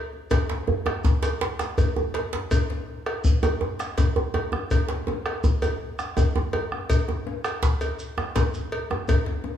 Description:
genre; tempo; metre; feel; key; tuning
west african traditional, West African drum ensemble; 109 BPM (dotted quarters); 12/8; straight; none; none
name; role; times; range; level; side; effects
djembe; percussion; 0.1-9.6 s; none; -30 LUFS; left 3 dB; none
bombo; percussion; 0.3-9.3 s; none; -26 LUFS; left 1 dB; none
cowbell; percussion; 0.3-9.3 s; none; -32 LUFS; equal; none
djembe; percussion; 0.3-9.1 s; none; -28 LUFS; right 3 dB; none
shekere; percussion; 0.3-9.3 s; none; -37 LUFS; right 1 dB; none
room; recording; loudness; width
wet recital hall reverb, RT60 1.5 s; small room ambience; -22 LUFS; side -10 dB against mid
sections
0.3-9.6 A section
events
none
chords
none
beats
| 0.31 0.86 1.41 1.96 | 2.51 3.06 3.61 4.16 | 4.71 5.25 5.80 6.35 | 6.90 7.45 7.99 8.54 | 9.09

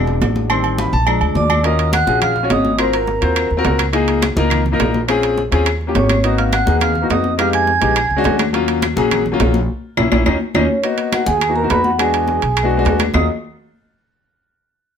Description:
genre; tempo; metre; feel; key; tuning
Afro-Cuban jazz; 209 BPM; 4/4; straight; Eb minor; A4 = 441 Hz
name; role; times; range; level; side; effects
warm grand piano; accompaniment; 0.0-13.3 s; Eb3 to C6; -18 LUFS; left 4 dB; none
upright bass; bass; 0.0-13.3 s; E1 to F2; -19 LUFS; equal; none
congas; percussion; 0.1-13.2 s; none; -24 LUFS; left 2 dB; none
timbales and agogo bells; percussion; 0.2-13.2 s; none; -22 LUFS; right 7 dB; none
claves; percussion; 0.5-13.2 s; none; -26 LUFS; left 8 dB; none
vibraphone with medium mallets; melody; 1.4-3.8, 6.0-8.4, 10.6-13.3 s; Bb4 to Cb6; -20 LUFS; equal; none
mellow hollow silver concert flute; second line; 1.4-3.8, 6.0-8.4, 10.6-13.3 s; Db4 to Ab6; -22 LUFS; right 7 dB; none
room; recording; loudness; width
light reverb; none; -14 LUFS; side -7 dB against mid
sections
0.0-1.6 A section; 1.6-10.8 B section; 10.8-13.1 C section; 13.1-14.3 D section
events
grand piano solo 0.0-1.6; band accent 9.7-10.8; drum fill 10.0-10.8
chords
0.0 E7; 0.5 Am7b5; 1.1 Bb7; 1.6 Ebm7; 2.8 Ab13; 3.9 Db69; 5.1 Bbm7; 5.7 Eb7; 6.2 Abm9; 7.4 Fm7b5; 8.0 Bb7alt; 8.5 Ebm7; 9.7 Bbdim; 10.3 Eb5; 10.8 Abm7; 12.0 E7; 13.1 Ebm7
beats
0.21 | 0.50 0.79 1.07 1.36 | 1.65 1.93 2.22 2.51 | 2.79 3.08 3.37 3.65 | 3.94 4.23 4.51 4.80 | 5.09 5.38 5.66 5.95 | 6.24 6.53 6.81 7.10 | 7.39 7.68 7.96 8.25 | 8.54 8.83 9.11 9.40 | 9.69 9.98 10.26 10.55 | 10.84 11.13 11.41 11.70 | 11.99 12.28 12.57 12.85 | 13.14

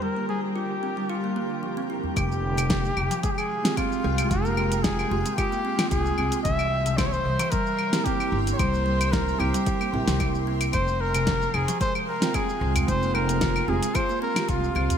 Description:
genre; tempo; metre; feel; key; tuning
organic downtempo; 112 BPM; 4/4; swing 54% on 16ths; F harmonic minor; A4 = 440 Hz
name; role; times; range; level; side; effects
trumpet with bucket mute; melody; 0.0-15.0 s; F4 to E5; -28 LUFS; equal; digital delay
muted felt-like synth keys; accompaniment; 0.0-15.0 s; Ab3 to G5; -33 LUFS; right 5 dB; chorus, sidechain pumping
granular cloud pad; sustained chords; 0.0-15.0 s; D3 to C6; -35 LUFS; left 1 dB; built-in reverb, lush chorus, sidechain pumping
kalimba; arpeggios; 0.0-15.0 s; C3 to F4; -31 LUFS; right 1 dB; none
twinkling granular texture; texture; 0.0-2.2 s; G5; -45 LUFS; right 2 dB; none
udu; percussion; 2.0-2.1, 12.8-15.0 s; none; -31 LUFS; equal; none
upright bass; bass; 2.2-14.9 s; F1 to C2; -27 LUFS; equal; none
deep house drum kit; drums; 2.2-15.0 s; claves, hi-hat, shaker, snare drum; -28 LUFS; left 1 dB; gated reverb
electronic kick drum; drums; 2.2-14.6 s; none; -30 LUFS; equal; none
room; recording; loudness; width
moderate lush hall reverb, RT60 1.8 s, small room ambience; bright 1980s-style digital production; -22 LUFS; side -8 dB against mid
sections
0.0-2.2 A section; 2.2-15.0 B section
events
filter sweep on kalimba 0.0-2.2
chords
0.0 Gm7; 2.2 Fmadd9; 6.5 C7; 10.7 Fmadd9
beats
| 0.02 0.56 1.09 1.63 | 2.17 2.70 3.24 3.77 | 4.31 4.84 5.38 5.92 | 6.45 6.99 7.52 8.06 | 8.59 9.13 9.66 10.20 | 10.74 11.27 11.81 12.34 | 12.88 13.41 13.95 14.49

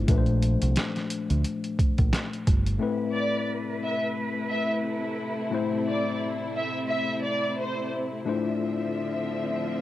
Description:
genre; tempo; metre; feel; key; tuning
hip hop, boom-bap hip-hop; 88 BPM; 4/4; swing 57% on 16ths; A minor; A4 = 436 Hz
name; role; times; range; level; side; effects
mellow tine electric piano; accompaniment; 0.0-9.8 s; A2 to C5; -29 LUFS; left 5 dB; medium stereo tremolo, cassette tape, high-pass filter, low-pass filter
deep dub fingered electric bass; bass; 0.0-2.8 s; G1 to D2; -24 LUFS; right 1 dB; none
boom bap sampler-style drum kit; drums; 0.1-2.8 s; hi-hat, kick drum, snare drum; -24 LUFS; right 1 dB; cassette tape
warm studio string section; sustained chords; 2.8-9.8 s; C3 to E5; -32 LUFS; equal; high-pass filter, low-pass filter
warm studio violin section; melody; 3.1-7.9 s; C5 to E5; -30 LUFS; right 1 dB; high-pass filter, low-pass filter, cassette tape, analog delay
room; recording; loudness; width
light reverb, digital ambience; home recording on cassette; -25 LUFS; side -14 dB against mid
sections
0.0-2.8 A section; 2.8-9.8 B section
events
none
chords
0.1 Bbmaj7; 2.8 Amadd9; 8.3 Dm9/A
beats
| 0.08 0.76 1.45 2.13 | 2.81 3.49 4.17 4.85 | 5.54 6.22 6.90 7.58 | 8.26 8.95 9.63

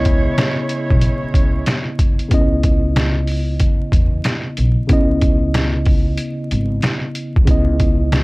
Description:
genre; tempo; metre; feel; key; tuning
hip hop, boom-bap hip-hop; 93 BPM; 4/4; swing 63% on 16ths; C# minor; A4 = 437 Hz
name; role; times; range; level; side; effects
mellow tine electric piano; accompaniment; 0.0-8.2 s; C#3 to D#5; -21 LUFS; equal; medium stereo tremolo, cassette tape, high-pass filter, low-pass filter
bright saxophone section; stabs; 0.0-2.0 s; G#3 to C#5; -25 LUFS; right 2 dB; high-pass filter, low-pass filter, tape echo, plate reverb
upright bass; bass; 0.0-8.2 s; G#1 to E2; -19 LUFS; equal; none
trip hop sampler-style drum kit; drums; 0.1-8.2 s; hi-hat, kick drum, snare drum; -16 LUFS; equal; none
room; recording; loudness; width
light reverb; dark, warm production, vinyl crackle; -14 LUFS; side -24 dB against mid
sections
0.0-2.3 A section; 2.3-8.2 B section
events
none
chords
0.0 C#m9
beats
0.38 1.02 1.67 | 2.31 2.96 3.60 4.25 | 4.89 5.54 6.18 6.83 | 7.47 8.12

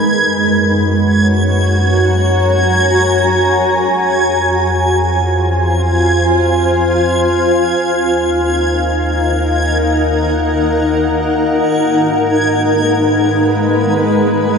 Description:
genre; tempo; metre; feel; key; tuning
ambient; free time; none; none; Eb minor; A4 = 440 Hz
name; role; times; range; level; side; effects
granular cloud pad; sustained chords; 0.0-14.6 s; Ab3 to Bb5; -13 LUFS; equal; built-in reverb
warm sub bass; bass; 0.0-14.6 s; Eb2 to Ab2; -18 LUFS; equal; none
backwards swelling texture; texture; 0.0-14.6 s; Ab6; -20 LUFS; equal; built-in reverb
room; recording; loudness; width
wet cathedral reverb, RT60 4.8 s; in a vast, echoing space, nothing above 10.9 kHz; -11 LUFS; side -6 dB against mid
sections
0.0-14.6 A section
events
fade-out on sub bass 0.0-14.6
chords
0.0 Gbadd9; 3.9 Fm; 7.8 Ebmadd9; 11.7 Abm7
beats
free time

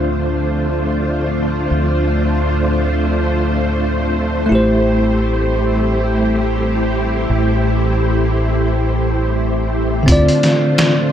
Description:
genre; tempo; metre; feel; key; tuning
trip hop; free time; none; none; unclear; A4 = 439 Hz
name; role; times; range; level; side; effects
bell-like tine electric piano; accompaniment; 0.0-11.1 s; D3 to D5; -20 LUFS; equal; harmonic tremolo, tape echo
string machine, cellos; sustained chords; 0.0-11.1 s; A3 to C5; -18 LUFS; equal; ensemble chorus
deep dub fingered electric bass; bass; 0.0-10.3 s; A1 to D2; -19 LUFS; equal; none
trip hop sampler-style drum kit; drums; 10.1-11.0 s; hi-hat, kick drum, snare drum; -16 LUFS; equal; overdrive
room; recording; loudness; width
light reverb; none; -14 LUFS; side -9 dB against mid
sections
0.0-10.1 A section; 10.1-11.1 B section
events
none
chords
0.0 Dm7; 4.5 Am7; 10.1 Dm7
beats
free time

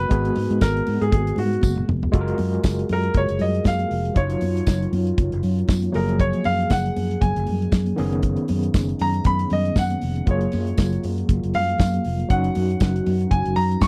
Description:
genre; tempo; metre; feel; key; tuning
disco; 118 BPM; 4/4; swing 56% on 16ths; F# major; A4 = 440 Hz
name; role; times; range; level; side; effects
warm baby grand piano; melody; 0.0-13.9 s; F#4 to C#6; -28 LUFS; equal; none
overdriven tine electric piano; accompaniment; 0.0-13.9 s; D#3 to C#5; -29 LUFS; equal; medium tremolo
mellow French horn section; sustained chords; 0.0-13.9 s; B2 to G#4; -36 LUFS; equal; none
fingered electric bass; bass; 0.0-13.9 s; E#1 to G#2; -26 LUFS; equal; none
damped 70s drum kit; drums; 0.0-13.9 s; hi-hat, kick drum, snare drum, toms; -22 LUFS; equal; none
congas; percussion; 0.1-13.9 s; none; -35 LUFS; equal; none
tambourine; percussion; 0.6-13.9 s; none; -42 LUFS; equal; none
room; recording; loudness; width
little or no reverb; dry, close 1970s-style studio recording; -21 LUFS; mono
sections
0.0-2.1 A section; 2.1-13.9 B section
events
drum fill 1.6-2.1; grand piano solo 2.1-13.9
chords
0.0 G#m9; 2.1 F#maj9; 4.2 D#m9/F#; 5.9 F#maj9; 8.0 B69/F#; 10.3 F#maj9; 12.3 D#m7/F#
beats
| 0.11 0.61 1.12 1.63 | 2.13 2.64 3.15 3.66 | 4.16 4.67 5.18 5.69 | 6.20 6.71 7.22 7.73 | 8.24 8.75 9.26 9.76 | 10.27 10.78 11.29 11.79 | 12.30 12.81 13.31 13.82

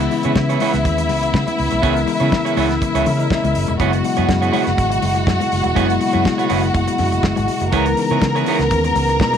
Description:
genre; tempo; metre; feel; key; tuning
disco; 122 BPM; 4/4; straight; unclear; A4 = 439 Hz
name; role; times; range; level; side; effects
clear studio string section; second line; 0.0-9.4 s; E4 to A#5; -20 LUFS; equal; none
clean electric guitar; accompaniment; 0.0-9.4 s; B3 to C#5; -23 LUFS; right 13 dB; none
mellow tine electric piano; accompaniment; 0.0-9.4 s; C#3 to E5; -22 LUFS; left 10 dB; medium stereo tremolo
percussive tonewheel organ; sustained chords; 0.0-9.4 s; B2 to A#4; -27 LUFS; right 2 dB; chorus vibrato, slow rotary speaker
vintage muted fingered electric bass; bass; 0.0-9.4 s; E1 to C#3; -21 LUFS; right 1 dB; none
damped 70s drum kit; drums; 0.0-9.4 s; hi-hat, kick drum, snare drum; -24 LUFS; right 1 dB; none
congas; percussion; 0.4-9.4 s; none; -28 LUFS; left 10 dB; none
room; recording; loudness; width
light reverb, studio ambience; 1960s-style stereo with parts hard left and right; -15 LUFS; side -8 dB against mid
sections
0.0-9.4 A section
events
tine electric piano fill 2.8-3.8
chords
0.0 C#m7; 3.8 F#9sus4; 7.7 C#m7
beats
0.36 0.85 1.34 | 1.84 2.33 2.82 3.31 | 3.80 4.29 4.78 5.27 | 5.76 6.26 6.75 7.24 | 7.73 8.22 8.71 9.20

